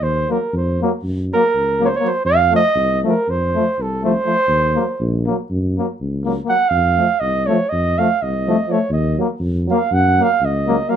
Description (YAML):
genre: balkan folk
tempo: 243 BPM (eighths)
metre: 9/8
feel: straight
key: F phrygian dominant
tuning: A4 = 440 Hz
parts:
  - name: mellow flugelhorn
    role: melody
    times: 0.0-11.0 s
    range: A4 to Gb5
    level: -17 LUFS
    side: right 3 dB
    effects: none
  - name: dark tuba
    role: bass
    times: 0.0-10.8 s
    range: Bb1 to Gb2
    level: -20 LUFS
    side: left 1 dB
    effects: none
  - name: clear trombone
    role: accompaniment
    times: 0.3-11.0 s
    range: A3 to Bb3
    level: -20 LUFS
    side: left 6 dB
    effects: none
  - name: warm euphonium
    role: accompaniment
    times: 0.3-11.0 s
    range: F3 to Gb3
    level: -24 LUFS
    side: right 5 dB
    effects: none
room: moderate studio ambience, RT60 0.5 s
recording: minimal, uncompressed stereo recording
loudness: -15 LUFS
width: side -9 dB against mid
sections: 0.0-11.0 A section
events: flugelhorn solo 0.0-11.0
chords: 0.0 Ebm; 1.0 Gb; 2.2 F; 4.5 Ebm; 5.5 Gb; 6.7 F; 8.9 Ebm; 9.9 Gb